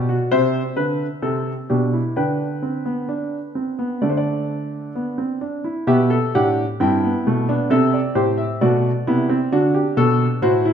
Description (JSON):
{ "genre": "classical, baroque-style 4-part fugue for grand piano", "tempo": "65 BPM", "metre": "4/4", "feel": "straight", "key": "G major", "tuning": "A4 = 437 Hz", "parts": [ { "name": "warm baby grand piano", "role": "solo", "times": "0.0-10.7 s", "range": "G2 to G5", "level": "-17 LUFS", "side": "equal", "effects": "none" } ], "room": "wet recital hall reverb, RT60 1.5 s", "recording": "minimal, uncompressed stereo recording", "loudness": "-18 LUFS", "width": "side -8 dB against mid", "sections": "0.0-5.9 A section; 5.9-10.7 B section", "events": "none", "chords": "0.3 C; 2.2 G/D; 4.0 D5; 5.9 G; 7.7 Am" }